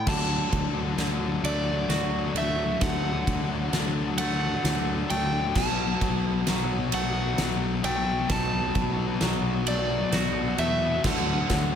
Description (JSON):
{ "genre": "post-rock", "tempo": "44 BPM (dotted quarters)", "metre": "6/8", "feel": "straight", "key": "D major", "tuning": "A4 = 440 Hz", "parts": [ { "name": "overdriven semi-hollow guitar", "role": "melody", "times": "0.0-11.8 s", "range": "D5 to A5", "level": "-31 LUFS", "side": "right 1 dB", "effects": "slapback echo" }, { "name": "twangy electric guitar", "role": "arpeggios", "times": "0.0-11.8 s", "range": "B2 to F#4", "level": "-34 LUFS", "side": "right 2 dB", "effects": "slapback echo" }, { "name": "overdriven fingered electric bass", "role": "bass", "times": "0.0-11.8 s", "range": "B1 to E2", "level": "-30 LUFS", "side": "right 1 dB", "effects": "none" }, { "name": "thick fuzz guitar", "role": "riff", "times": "0.1-11.8 s", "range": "B2 to F#3", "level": "-28 LUFS", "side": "left 6 dB", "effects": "distortion" }, { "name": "huge arena drum kit", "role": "drums", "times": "0.1-11.7 s", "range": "crash cymbal, kick drum, ride cymbal, snare drum", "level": "-30 LUFS", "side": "right 1 dB", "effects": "none" } ], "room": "light reverb", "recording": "none", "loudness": "-23 LUFS", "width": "side -8 dB against mid", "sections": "0.1-11.8 A section", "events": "build-up 0.1-11.8; drum fill 0.1-11.8", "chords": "0.1 D; 5.6 B7(no3); 11.0 D" }